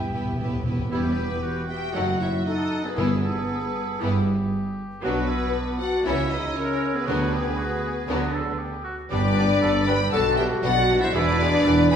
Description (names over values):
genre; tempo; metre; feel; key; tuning
quick classical-period movement for symphony orchestra; 117 BPM; 4/4; straight; E minor; A4 = 440 Hz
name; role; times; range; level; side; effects
rich studio violin section; melody; 0.0-12.0 s; B4 to B5; -28 LUFS; left 3 dB; none
bright small flute group; second line; 0.0-12.0 s; F#4 to G#5; -33 LUFS; left 1 dB; none
dark clarinet; second line; 0.0-12.0 s; B3 to B4; -31 LUFS; equal; none
rich studio violin section; second line; 0.0-12.0 s; B3 to B4; -34 LUFS; left 2 dB; none
warm oboe; second line; 0.0-12.0 s; D4 to G5; -31 LUFS; right 2 dB; none
rich studio viola section; accompaniment; 0.0-12.0 s; E3 to E4; -32 LUFS; equal; none
mellow French horn section; sustained chords; 0.0-12.0 s; B3 to B4; -29 LUFS; left 2 dB; none
warm studio cello section; bass; 0.0-12.0 s; E2 to D3; -29 LUFS; right 2 dB; none
timpani; percussion; 0.0-3.7, 7.1-9.8 s; E2 to D3; -32 LUFS; left 1 dB; none
rich studio double bass section; bass; 0.1-12.0 s; E1 to D2; -30 LUFS; right 3 dB; none
room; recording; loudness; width
wet recital hall reverb, RT60 1.6 s; recorded in a church or concert hall; -21 LUFS; side -8 dB against mid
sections
0.9-12.0 A section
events
timpani fill 0.0-0.9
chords
0.0 Em; 2.0 D#dim/F#; 3.0 Em/G; 5.0 Bm; 6.1 A#dim/C#; 7.1 Bm/D; 9.1 G; 10.1 G/B; 11.2 E7